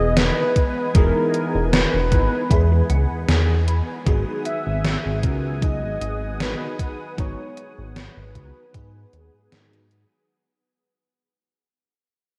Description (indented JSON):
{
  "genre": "vaporwave",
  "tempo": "77 BPM",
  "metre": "4/4",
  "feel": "swing 54% on 16ths",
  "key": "unclear",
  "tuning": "A4 = 440 Hz",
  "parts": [
    { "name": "warm velvety synth lead", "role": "melody", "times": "0.0-9.9 s", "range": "A#4 to E5", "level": "-28 LUFS", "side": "equal", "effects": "chorus, tape echo" },
    { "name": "FM electric piano with soft pad layer", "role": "accompaniment", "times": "0.0-10.3 s", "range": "D#3 to D#5", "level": "-32 LUFS", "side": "equal", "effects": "phaser, ensemble chorus, cassette tape, delay" },
    { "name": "lush unison pad", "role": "sustained chords", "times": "0.0-10.3 s", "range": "B3 to D#6", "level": "-36 LUFS", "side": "equal", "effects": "chorus" },
    { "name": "chorused synth bass", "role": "bass", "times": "0.0-10.1 s", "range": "E1 to G#2", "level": "-24 LUFS", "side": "equal", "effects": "none" },
    { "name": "mellow electric guitar", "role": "riff", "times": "0.2-9.9 s", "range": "B3 to B5", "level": "-34 LUFS", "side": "equal", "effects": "ensemble chorus, delay" },
    { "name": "gated 80s digital drum machine", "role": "drums", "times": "0.2-10.1 s", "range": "hi-hat, snare drum", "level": "-26 LUFS", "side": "equal", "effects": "gated reverb, gated reverb snare, overdrive" },
    { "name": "electronic kick drum", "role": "drums", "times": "0.6-8.9 s", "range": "none", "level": "-22 LUFS", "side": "equal", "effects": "overdrive" }
  ],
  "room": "moderate huge ambient reverb, RT60 3.7 s",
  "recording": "dreamy mix soaked in reverb, cassette tape",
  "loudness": "-21 LUFS",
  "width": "mono",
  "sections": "0.0-10.3 A section",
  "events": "clean electric guitar fill 1.7-4.1; fade-out 2.0-10.3",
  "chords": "0.0 Emaj7; 4.1 G#m7"
}